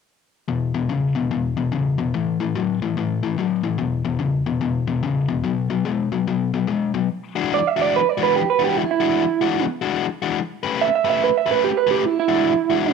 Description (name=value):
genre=blues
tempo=146 BPM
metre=4/4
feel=swing 64% on 8ths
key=E mixolydian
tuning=A4 = 440 Hz
part: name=overdriven electric guitar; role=riff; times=0.5-12.9 s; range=E2 to B4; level=-21 LUFS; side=left 6 dB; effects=none
part: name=electric guitar through a small old amp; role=melody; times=7.5-12.9 s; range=E4 to E5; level=-18 LUFS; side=right 11 dB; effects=slapback echo
room=moderate echo chamber reverb, RT60 1.4 s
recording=1960s-style stereo with parts hard left and right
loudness=-19 LUFS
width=side -6 dB against mid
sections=0.5-7.1 A section; 7.1-12.9 B section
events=clean electric guitar solo 7.1-12.9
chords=0.5 E5; 2.1 A5; 3.8 E5; 5.4 B5; 7.1 E9; 10.4 A9; 12.0 E9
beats=| 0.48 0.90 1.31 1.72 | 2.14 2.55 2.96 3.38 | 3.79 4.20 4.62 5.03 | 5.44 5.85 6.27 6.68 | 7.09 7.50 7.92 8.33 | 8.74 9.15 9.56 9.97 | 10.38 10.80 11.21 11.62 | 12.03 12.44 12.85